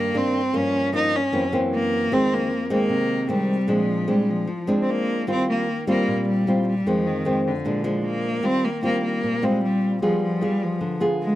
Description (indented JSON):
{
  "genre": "bossa nova",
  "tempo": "152 BPM",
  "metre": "4/4",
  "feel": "straight",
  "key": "Eb major",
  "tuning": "A4 = 440 Hz",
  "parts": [
    { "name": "rich cello", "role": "melody", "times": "0.0-11.4 s", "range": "D3 to Eb4", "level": "-23 LUFS", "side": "equal", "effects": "none" },
    { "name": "nylon-string guitar", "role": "accompaniment", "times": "0.0-11.4 s", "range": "F2 to Ab4", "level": "-23 LUFS", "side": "equal", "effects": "none" }
  ],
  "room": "light reverb, small room ambience",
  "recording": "dry, close 1970s-style studio recording",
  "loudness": "-20 LUFS",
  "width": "side -14 dB against mid",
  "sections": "0.0-8.4 A section; 8.4-11.4 A section",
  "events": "none",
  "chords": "0.0 Cm9; 0.5 Gm7b5; 1.3 Gb7#11; 2.1 Fm7; 3.7 Bb9; 5.3 Eb69; 6.9 Fm7; 7.6 Bb7; 8.4 Eb69; 10.0 G7b9",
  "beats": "0.13 | 0.53 0.92 1.31 1.71 | 2.10 2.50 2.90 3.29 | 3.69 4.08 4.48 4.87 | 5.27 5.66 6.06 6.46 | 6.85 7.25 7.64 8.04 | 8.43 8.83 9.23 9.62 | 10.02 10.41 10.81 11.21"
}